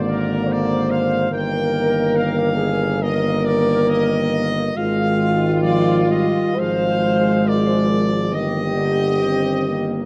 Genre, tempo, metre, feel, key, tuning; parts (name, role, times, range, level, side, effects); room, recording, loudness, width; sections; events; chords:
classical, hymn-like piece for brass band; 58-74 BPM; 4/4; rubato; Eb major; A4 = 443 Hz
mellow French horn section; second line; 0.0-10.1 s; F4 to D5; -24 LUFS; equal
mellow trombone section; accompaniment; 0.0-10.1 s; F3 to C4; -26 LUFS; equal
warm euphonium; accompaniment; 0.0-10.1 s; D3 to F3; -28 LUFS; equal
warm tuba; bass; 0.0-10.1 s; G1 to Ab1; -25 LUFS; equal
brilliant trumpet section; melody; 0.1-10.0 s; Bb4 to G5; -28 LUFS; equal
moderate scoring stage reverb, RT60 1.8 s; dark, warm production, vinyl crackle; -19 LUFS; mono
0.0-10.1 A section
0.0 Bb7/Ab; 1.3 Eb/G; 4.8 Fm13/Ab; 6.6 Bb9/Ab; 8.3 Eb/G